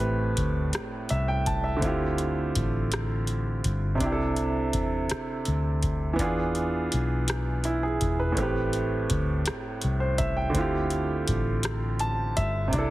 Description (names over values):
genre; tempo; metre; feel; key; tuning
slow six-eight R&B; 55 BPM (dotted quarters); 6/8; straight; unclear; A4 = 439 Hz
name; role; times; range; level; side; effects
clear baby grand piano; accompaniment; 0.0-12.9 s; A2 to A5; -27 LUFS; right 2 dB; none
vintage muted fingered electric bass; bass; 0.0-12.9 s; E1 to E2; -28 LUFS; left 1 dB; none
booming analog drum machine; drums; 0.0-12.9 s; hi-hat, kick drum, rim click; -32 LUFS; left 1 dB; none
room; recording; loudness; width
light reverb, digital ambience; heavily compressed radio sound, multiband compression; -24 LUFS; side -16 dB against mid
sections
0.0-12.9 A section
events
grand piano fill 11.6-12.7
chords
0.0 Am9; 1.8 Dm11; 4.0 C69; 6.2 E7b9; 8.4 Am9; 10.5 Dm11